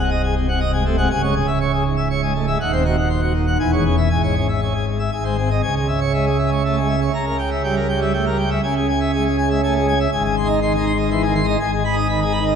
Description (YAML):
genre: classical, organ toccata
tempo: 121 BPM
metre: 3/4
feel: straight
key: C# minor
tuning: A4 = 439 Hz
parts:
  - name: pipe organ, plenum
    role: solo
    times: 0.0-12.6 s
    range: B#0 to B#5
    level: -17 LUFS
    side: equal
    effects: none
room: wet concert hall reverb, RT60 1.8 s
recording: nothing above 10.3 kHz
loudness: -17 LUFS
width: side -7 dB against mid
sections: 0.0-5.6 A section; 5.6-12.6 B section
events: none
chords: 0.0 G#7/B#; 1.1 C#m; 2.6 Cdim/Eb; 3.6 C#m/E; 4.1 C#m/G#; 5.1 G#; 5.6 C#m; 7.1 C#dim7; 8.6 C#m; 10.1 G#; 11.6 G#m